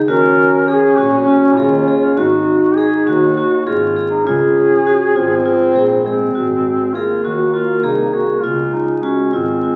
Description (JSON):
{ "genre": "contemporary instrumental, chamber music in an uneven meter", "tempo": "201 BPM (eighths)", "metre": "7/8", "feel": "straight", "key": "Ab mixolydian", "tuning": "A4 = 439 Hz", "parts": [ { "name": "mellow French horn", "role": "second line", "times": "0.0-9.8 s", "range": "Ab3 to Eb4", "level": "-20 LUFS", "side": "equal", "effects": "none" }, { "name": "vibraphone with medium hard mallets", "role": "arpeggios", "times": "0.0-9.8 s", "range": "F4 to Ab4", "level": "-19 LUFS", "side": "equal", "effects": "none" }, { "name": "mellow duduk", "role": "melody", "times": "0.1-9.8 s", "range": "C4 to Bb4", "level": "-19 LUFS", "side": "equal", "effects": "none" }, { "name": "rich double bass", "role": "bass", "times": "0.1-9.6 s", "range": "Ab1 to Eb2", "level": "-28 LUFS", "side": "equal", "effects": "none" } ], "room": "wet recital hall reverb, RT60 1.5 s", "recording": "very old 78 rpm record, vinyl crackle", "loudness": "-14 LUFS", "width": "mono", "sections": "0.0-6.3 A section; 6.3-9.8 B section", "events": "none", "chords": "0.1 Ebm7; 2.2 Ab5; 4.3 Dbmaj7; 6.3 Ab7; 8.4 Dbmaj7", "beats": "| 0.09 0.39 0.68 0.98 1.28 1.58 1.88 | 2.17 2.47 2.77 3.07 3.37 3.66 3.96 | 4.26 4.56 4.86 5.15 5.45 5.75 6.05 | 6.35 6.64 6.94 7.24 7.54 7.84 8.13 | 8.43 8.73 9.03 9.33 9.63" }